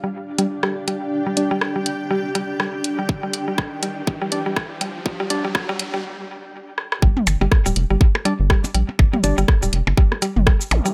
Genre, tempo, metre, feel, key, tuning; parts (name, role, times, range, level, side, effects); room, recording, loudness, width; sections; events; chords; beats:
minimal techno; 122 BPM; 4/4; swing 58% on 16ths; A4 = 437 Hz
mallet-like synth pluck; riff; 0.0-10.9 s; G3; -28 LUFS; equal; chorus, sidechain pumping, dub echo
riser and zap; sound effects; 1.2-6.0, 10.7-10.9 s; -36 LUFS; equal
granular cloud pad; texture; 0.0-6.0 s; D4 to G5; -30 LUFS; equal; built-in reverb, sidechain pumping
percussive organ stab; stabs; 0.4-9.4 s; G3 to D5; -27 LUFS; equal; chorus, vintage 12-bit sampler grit, tape echo
garage drum kit; drums; 0.4-10.9 s; hi-hat, rim click, shaker; -26 LUFS; equal; high-pass filter on hats, high-pass filter on snare, high-pass filter on perc, high-pass filter on room
electronic kick drum; drums; 3.1-10.6 s; -18 LUFS; equal
rubbery square bass; bass; 7.0-10.8 s; D1 to Bb1; -22 LUFS; equal; sidechain pumping
electronic percussion blips and toms; percussion; 7.0-10.8 s; -26 LUFS; equal; tape echo
light reverb; high-pass filter; -20 LUFS; mono
0.0-7.0 A section; 7.0-10.9 B section
build-up 0.0-7.0; filter sweep on synth arpeggio sound 0.0-7.0; filter sweep on synth stab 0.0-7.0; filter sweep 0.0-7.0; riser 1.2-6.0; break 6.0-7.0; drum fill 6.8; drop 7.0-10.9
0.0 G5
0.14 0.63 | 1.12 1.61 2.11 2.60 | 3.09 3.58 4.07 4.57 | 5.06 5.55 6.04 6.53 | 7.02 7.52 8.01 8.50 | 8.99 9.48 9.97 10.47